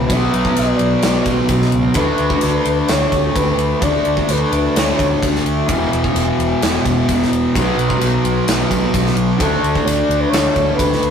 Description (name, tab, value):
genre	rock, shoegaze and dream pop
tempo	129 BPM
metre	4/4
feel	straight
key	D major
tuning	A4 = 440 Hz
part	reedy FM lead	melody	0.0-5.2, 9.4-11.1 s	A4 to E5	-20 LUFS	left 1 dB	chorus, tremolo
part	fuzz guitar	riff	0.0-11.1 s	E2 to D4	-16 LUFS	equal	distortion
part	growling fingered electric bass	bass	0.0-11.1 s	E1 to D2	-21 LUFS	equal	overdrive
part	gated 80s drum kit	drums	0.1-11.1 s	kick drum, ride cymbal, snare drum	-21 LUFS	equal	none
room	wet studio reverb, RT60 0.6 s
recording	rough rehearsal-room recording, warm saturation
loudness	-14 LUFS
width	side -7 dB against mid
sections	0.0-11.1 A section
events	none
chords	0.1 Bm; 2.0 D5; 5.7 E5; 7.6 B5; 9.4 D5